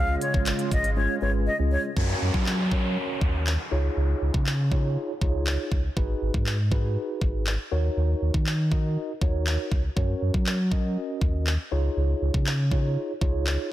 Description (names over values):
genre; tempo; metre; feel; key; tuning
dance-pop; 120 BPM; 4/4; straight; F# major; A4 = 440 Hz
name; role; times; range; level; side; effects
bright reedy silver concert flute; melody; 0.0-1.8 s; C#5 to E#5; -29 LUFS; left 1 dB; sidechain pumping, digital delay
mellow tine electric piano; accompaniment; 0.0-13.7 s; G#3 to D#5; -31 LUFS; right 2 dB; medium stereo tremolo, sidechain pumping
sweeping resonant pad; sustained chords; 0.0-1.9 s; C#3 to E#4; -34 LUFS; equal; chorus, sidechain pumping
sub bass with octave; bass; 0.0-13.6 s; G#1 to F#3; -25 LUFS; equal; sidechain pumping
pop drum kit; drums; 0.2-13.6 s; handclaps, hi-hat, kick drum; -26 LUFS; equal; none
downlifter; sound effects; 2.0-6.0 s; none; -33 LUFS; equal; none
room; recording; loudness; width
little or no reverb; dense, heavily limited modern master; -23 LUFS; side -14 dB against mid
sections
0.0-2.0 A section; 2.0-13.7 B section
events
drop 0.0-2.0; silent gap 1.0-2.0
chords
0.0 C#; 2.0 F#; 3.7 C#add9; 6.0 G#m7; 7.7 D#m7; 10.0 F#; 11.7 C#add9